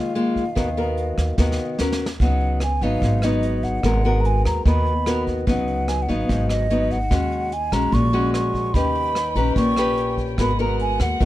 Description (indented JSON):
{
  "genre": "bossa nova",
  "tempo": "147 BPM",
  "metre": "4/4",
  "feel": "straight",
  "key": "unclear",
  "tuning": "A4 = 440 Hz",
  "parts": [
    { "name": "mellow hollow concert flute", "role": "melody", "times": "0.0-11.3 s", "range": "Eb5 to Db6", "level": "-26 LUFS", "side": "right 1 dB", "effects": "none" },
    { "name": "nylon-string guitar", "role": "accompaniment", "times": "0.0-11.3 s", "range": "Ab2 to Cb5", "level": "-23 LUFS", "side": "left 2 dB", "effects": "none" },
    { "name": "vintage brush drum kit", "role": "drums", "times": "0.2-11.3 s", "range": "hi-hat, kick drum, rim click, snare drum", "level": "-27 LUFS", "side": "equal", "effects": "none" },
    { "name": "upright bass", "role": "bass", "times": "0.6-11.3 s", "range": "Ab1 to D#2", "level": "-23 LUFS", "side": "equal", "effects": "none" },
    { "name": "warm studio violin section", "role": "sustained chords", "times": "8.7-11.3 s", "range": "Cb4 to G5", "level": "-32 LUFS", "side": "left 2 dB", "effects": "none" }
  ],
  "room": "little or no reverb",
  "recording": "dark, warm production",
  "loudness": "-18 LUFS",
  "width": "side -15 dB against mid",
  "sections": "0.0-2.2 A section; 2.2-11.3 B section",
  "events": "drum fill 1.4-2.2",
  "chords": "0.0 Db69 (rootless); 0.6 Bmaj7#11/D#; 1.8 Ebm7; 2.2 Db9sus4; 3.8 Abm9; 5.5 Db9sus4; 7.1 Ebm7; 8.7 Eb7b13; 10.4 Abm9",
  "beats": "0.16 | 0.57 0.98 1.39 1.80 | 2.21 2.62 3.02 3.43 | 3.84 4.25 4.66 5.07 | 5.48 5.88 6.29 6.70 | 7.11 7.52 7.93 8.34 | 8.75 9.16 9.57 9.98 | 10.39 10.80 11.21"
}